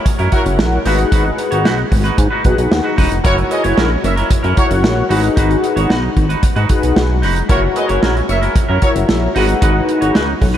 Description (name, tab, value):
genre	early-eighties boogie funk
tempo	113 BPM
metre	4/4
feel	straight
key	unclear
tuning	A4 = 441 Hz
part	clean electric guitar	riff	0.0-10.6 s	C#4 to C#5	-21 LUFS	right 2 dB	wide subtle chorus
part	chorused synth bass	bass	0.1-10.6 s	E1 to G#2	-17 LUFS	equal	none
part	modern studio drum kit	drums	0.1-10.6 s	hi-hat, kick drum, snare drum	-16 LUFS	equal	none
part	mellow horn section	second line	0.3-8.9 s	E4 to E5	-23 LUFS	right 1 dB	none
part	mellow synth brass	accompaniment	0.3-10.2 s	D#4 to F#5	-18 LUFS	left 3 dB	chorus
room	moderate huge ambient reverb, RT60 5.3 s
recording	dreamy mix soaked in reverb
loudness	-12 LUFS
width	side -10 dB against mid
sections	0.0-10.6 A section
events	none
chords	0.0 F#7; 0.9 G#m7; 3.2 F#7; 5.1 G#m7; 7.5 F#7; 9.4 G#m7